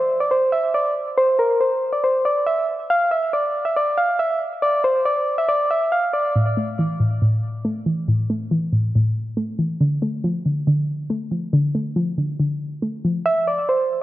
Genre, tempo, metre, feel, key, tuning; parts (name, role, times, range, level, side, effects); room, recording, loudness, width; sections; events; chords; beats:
hip hop; 139 BPM; 4/4; half-time; A4 = 439 Hz
soft electric-piano-like synth keys; melody; 0.0-6.3, 13.3-14.0 s; Bb4 to F5; -18 LUFS; equal; chorus, low-pass filter, digital delay
soft round pluck; accompaniment; 6.4-13.3 s; A2 to A3; -20 LUFS; equal; chorus, low-pass filter
moderate lush hall reverb, RT60 2.5 s; worn, warbling old tape, cassette tape, warbly pitch drift; -18 LUFS; side -15 dB against mid
0.0-14.0 A section
break 0.0-6.4
0.0 N.C.; 6.4 A5; 9.8 Dm; 13.3 N.C.
0.31 0.74 | 1.17 1.60 2.04 2.47 | 2.90 3.33 3.76 4.19 | 4.63 5.06 5.49 5.92 | 6.35 6.78 7.22 7.65 | 8.08 8.51 8.94 9.37 | 9.81 10.24 10.67 11.10 | 11.53 11.96 12.39 12.83 | 13.26 13.69